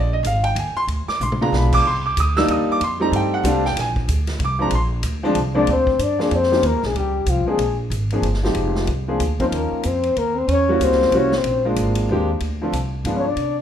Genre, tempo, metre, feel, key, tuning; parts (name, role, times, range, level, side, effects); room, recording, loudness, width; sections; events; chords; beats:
jazz, small-group swing and bop; 187 BPM; 3/4; swing 61% on 8ths; Bb mixolydian; A4 = 440 Hz
clear upright piano; accompaniment; 0.0-13.2 s; Bb2 to E6; -21 LUFS; equal
upright bass; bass; 0.0-13.6 s; F1 to C3; -22 LUFS; equal
vintage drum kit; drums; 0.2-13.5 s; crash cymbal, hi-hat, kick drum, ride cymbal, snare drum, toms; -30 LUFS; equal
breathy flugelhorn; melody; 5.6-13.6 s; F4 to D5; -20 LUFS; left 4 dB
dark alto saxophone; second line; 5.6-13.6 s; F3 to D4; -25 LUFS; right 2 dB
moderate large studio reverb, RT60 1.2 s; minimal, uncompressed stereo recording; -17 LUFS; side -9 dB against mid
0.0-5.7 A section; 5.7-13.6 B section
drum fill 1.2-1.5
0.0 Abmaj7sus2; 0.9 Dm; 1.5 Bdim7; 1.8 Cm7; 2.8 F9; 3.8 Bb9; 5.7 Bbadd9; 6.6 Eb9 (rootless); 7.6 Bb7sus2; 8.6 Fm7; 9.2 Bbadd9; 9.5 Ebsus2; 10.5 Edim7; 11.5 Bb9; 12.4 Dm7; 13.1 G7b9
0.25 0.56 | 0.89 1.20 1.52 | 1.84 2.16 2.48 | 2.80 3.12 3.44 | 3.76 4.08 4.40 | 4.72 5.04 5.36 | 5.68 6.00 6.32 | 6.64 6.96 7.28 | 7.60 7.92 8.24 | 8.56 8.88 9.21 | 9.53 9.85 10.17 | 10.49 10.81 11.13 | 11.45 11.77 12.09 | 12.41 12.73 13.05 | 13.37